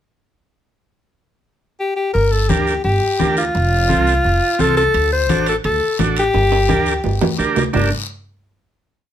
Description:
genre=latin, cumbia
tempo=172 BPM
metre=4/4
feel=straight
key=G minor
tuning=A4 = 440 Hz
part: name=edgy alto saxophone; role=melody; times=1.8-7.9 s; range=D4 to C5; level=-17 LUFS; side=left 2 dB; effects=none
part: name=upright bass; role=bass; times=2.1-7.9 s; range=F1 to D2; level=-20 LUFS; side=equal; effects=none
part: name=congas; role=percussion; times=2.1-7.8 s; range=none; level=-22 LUFS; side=left 3 dB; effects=none
part: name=guiro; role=percussion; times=2.1-7.8 s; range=none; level=-30 LUFS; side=left 6 dB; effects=none
part: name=combo organ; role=accompaniment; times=2.5-7.9 s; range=C4 to Bb4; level=-21 LUFS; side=right 5 dB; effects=none
part: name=timbales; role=percussion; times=4.9-7.8 s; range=none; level=-23 LUFS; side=right 8 dB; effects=none
room=light reverb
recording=none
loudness=-14 LUFS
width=side -10 dB against mid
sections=0.7-2.1 pickup bar; 2.1-7.7 A section; 7.7-9.1 final chord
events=drum fill 6.3-7.7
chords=0.7 N.C.; 2.1 Gm; 3.5 F; 4.9 D7; 6.3 Gm

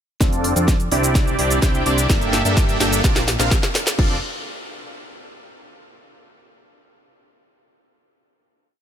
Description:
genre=EDM, festival progressive house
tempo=127 BPM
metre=4/4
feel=straight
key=F major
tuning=A4 = 438 Hz
part: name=dense compressed supersaw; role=riff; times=0.2-4.2 s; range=Bb3 to G5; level=-21 LUFS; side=right 1 dB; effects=sidechain pumping, low-pass filter, digital delay
part: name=fat analog bass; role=bass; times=0.2-4.2 s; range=F1 to G2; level=-23 LUFS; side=equal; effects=sidechain pumping
part: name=electronic kick drum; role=drums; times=0.2-4.1 s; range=none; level=-19 LUFS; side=equal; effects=small room ambience
part: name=house drum kit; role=drums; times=0.2-4.1 s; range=crash cymbal, hi-hat, shaker, snare drum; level=-23 LUFS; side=equal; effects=small room ambience
room=light reverb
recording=none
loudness=-16 LUFS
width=side -9 dB against mid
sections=0.2-4.0 build; 4.0-5.9 final chord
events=build-up 0.2-4.0; drum fill 0.2-4.0; filter sweep on supersaw synth 0.2-4.0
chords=0.2 F6; 1.2 Cadd9; 2.1 Gmadd9; 3.0 Bbadd9; 4.0 F6

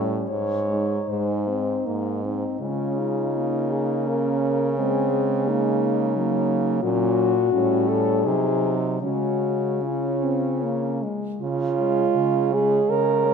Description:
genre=classical, lyrical piece for horn quartet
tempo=74-89 BPM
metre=3/4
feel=rubato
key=Db major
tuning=A4 = 437 Hz
part: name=warm French horn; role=second line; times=0.0-13.3 s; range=Bb3 to Bb4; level=-25 LUFS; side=right 7 dB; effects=none
part: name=mellow French horn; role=accompaniment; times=0.0-13.3 s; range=Gb3 to Db4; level=-28 LUFS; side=left 3 dB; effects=none
part: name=clear French horn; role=bass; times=0.0-13.3 s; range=Ab2 to Db3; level=-26 LUFS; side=right 2 dB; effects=none
part: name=dark French horn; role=melody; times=0.3-13.3 s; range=Eb4 to Db5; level=-26 LUFS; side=left 9 dB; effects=none
room=moderate concert hall reverb, RT60 1.9 s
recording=faint mains hum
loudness=-20 LUFS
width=side -6 dB against mid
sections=0.0-11.4 A section; 11.4-13.3 A section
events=none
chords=0.3 Ab; 2.6 Db; 4.8 Ab/Db; 6.8 Gb/Bb; 7.5 A7; 8.3 Ab7/C; 9.0 Db

